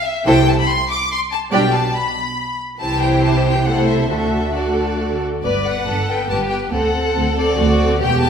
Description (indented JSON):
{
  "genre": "quick classical-period movement for string orchestra",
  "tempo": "141 BPM",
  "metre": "3/4",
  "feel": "straight",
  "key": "G major",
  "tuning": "A4 = 440 Hz",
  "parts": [
    { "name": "rich chamber violin section", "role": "melody", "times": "0.0-8.3 s", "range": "D5 to D6", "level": "-21 LUFS", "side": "left 3 dB", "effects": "none" },
    { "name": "clear chamber violin section", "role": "second line", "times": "0.3-8.3 s", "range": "F#4 to D5", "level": "-22 LUFS", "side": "left 1 dB", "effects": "none" },
    { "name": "rich chamber viola section", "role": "accompaniment", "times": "0.3-8.3 s", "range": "E3 to B4", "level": "-20 LUFS", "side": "equal", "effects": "none" },
    { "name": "clear chamber double bass section", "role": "bass", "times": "0.3-8.3 s", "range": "E1 to D2", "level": "-23 LUFS", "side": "right 2 dB", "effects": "none" },
    { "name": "rich studio cello section", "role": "bass", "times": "0.3-8.3 s", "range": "D2 to D3", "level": "-23 LUFS", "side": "right 3 dB", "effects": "none" }
  ],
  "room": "wet recital hall reverb, RT60 1.4 s",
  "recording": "none",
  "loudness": "-15 LUFS",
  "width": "side -7 dB against mid",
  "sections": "0.0-5.4 A section; 5.4-8.3 B section",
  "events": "none",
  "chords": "0.3 Am/C; 1.5 G/B; 2.8 C; 3.7 Am/C; 4.1 D; 5.4 G; 6.7 D7"
}